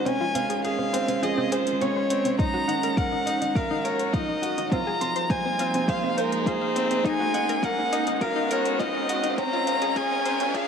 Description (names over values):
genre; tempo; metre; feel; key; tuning
piano and strings electronica; 103 BPM; 4/4; straight; Eb dorian; A4 = 436 Hz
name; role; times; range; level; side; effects
rich violin; melody; 0.0-10.7 s; Bb4 to Bb5; -27 LUFS; left 1 dB; none
warm string quartet; sustained chords; 0.0-10.7 s; Eb3 to Ab4; -31 LUFS; right 3 dB; sidechain pumping
bright concert grand piano; riff; 0.0-10.7 s; C4 to C6; -28 LUFS; equal; ping-pong delay
analog pluck; arpeggios; 0.1-10.6 s; C4 to F5; -31 LUFS; left 2 dB; chorus, sidechain pumping, ping-pong delay
electronic hi-hat; drums; 0.1-10.7 s; none; -37 LUFS; left 1 dB; overdrive
electronic kick drum; drums; 2.4-10.7 s; none; -28 LUFS; equal; overdrive
riser; sound effects; 4.0-10.7 s; none; -33 LUFS; equal; none
room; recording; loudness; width
moderate huge ambient reverb, RT60 7.4 s; dark, warm production, high-pass filter; -22 LUFS; side -6 dB against mid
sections
0.0-10.7 A section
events
build-up 0.0-10.7; filter sweep on synth arpeggio sound 0.0-10.7; riser 4.0-10.7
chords
0.1 Dbmaj7; 2.4 Ebmadd9; 4.7 Fm; 7.1 Ebmadd9; 9.4 Dbmaj7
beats
| 0.06 0.64 1.23 1.81 | 2.39 2.97 3.56 4.14 | 4.72 5.30 5.89 6.47 | 7.05 7.63 8.22 8.80 | 9.38 9.96 10.55